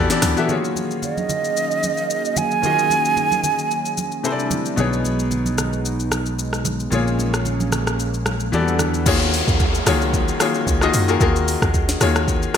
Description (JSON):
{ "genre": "amapiano", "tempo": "112 BPM", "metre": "4/4", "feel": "swing 55% on 16ths", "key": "Eb minor", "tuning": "A4 = 440 Hz", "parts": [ { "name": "clear grand piano", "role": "accompaniment", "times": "0.0-12.6 s", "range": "Bb2 to E5", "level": "-22 LUFS", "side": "left 4 dB", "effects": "none" }, { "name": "warm analog pad", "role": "sustained chords", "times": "0.0-9.1 s", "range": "C3 to F#5", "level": "-27 LUFS", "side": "right 2 dB", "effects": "chorus, sidechain pumping" }, { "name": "deep log drum bass", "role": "bass", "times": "0.0-0.4, 9.1-12.5 s", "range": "Db2 to Gb2", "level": "-21 LUFS", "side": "right 1 dB", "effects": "none" }, { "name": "afro-pop drum kit", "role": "drums", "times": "0.1-12.6 s", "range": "crash cymbal, hi-hat, kick drum, rim click, shaker, snare drum", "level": "-23 LUFS", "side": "equal", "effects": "gated reverb" }, { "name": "congas", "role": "percussion", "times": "0.2-8.9 s", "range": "none", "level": "-30 LUFS", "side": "right 5 dB", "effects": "none" }, { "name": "breathy mellow silver concert flute", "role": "melody", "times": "1.0-4.5 s", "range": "Eb5 to Ab5", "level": "-20 LUFS", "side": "right 5 dB", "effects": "ping-pong delay" }, { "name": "fingered electric bass", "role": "bass", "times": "4.8-9.1 s", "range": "Bb1 to E2", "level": "-24 LUFS", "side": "equal", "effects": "none" }, { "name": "downlifter", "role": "sound effects", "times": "9.1-12.6 s", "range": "none", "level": "-27 LUFS", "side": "right 1 dB", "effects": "none" } ], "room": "light reverb, digital ambience", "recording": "bright 1980s-style digital production", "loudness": "-17 LUFS", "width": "side -8 dB against mid", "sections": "0.5-9.1 A section; 9.1-12.6 B section", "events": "drop 9.1-12.6", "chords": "0.5 Ebm11; 4.2 C69; 4.8 B69; 6.9 Bbm7; 8.5 Em11; 9.1 Ebm11" }